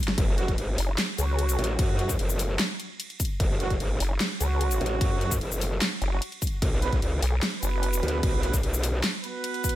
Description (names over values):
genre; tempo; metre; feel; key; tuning
heavy wobble dubstep; 149 BPM; 4/4; half-time; F# minor; A4 = 441 Hz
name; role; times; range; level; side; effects
dubstep drum kit; drums; 0.0-9.8 s; crash cymbal, handclaps, hi-hat, shaker, snare drum; -30 LUFS; left 1 dB; none
growl bass; bass; 0.2-9.0 s; F#1 to F#2; -27 LUFS; equal; chorus, overdrive
electronic kick drum; drums; 0.2-9.7 s; none; -26 LUFS; equal; none
warm brass ensemble; stabs; 0.4-9.8 s; F#3 to B4; -33 LUFS; right 4 dB; ping-pong delay
vowel-sweep wobble bass; bass; 0.8-1.6, 4.0-8.0 s; F#1 to C#2; -25 LUFS; equal; chorus, overdrive
room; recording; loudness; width
digital ambience; none; -24 LUFS; side -14 dB against mid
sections
0.0-9.8 A section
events
drum fill 0.0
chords
0.2 F#5; 6.6 B5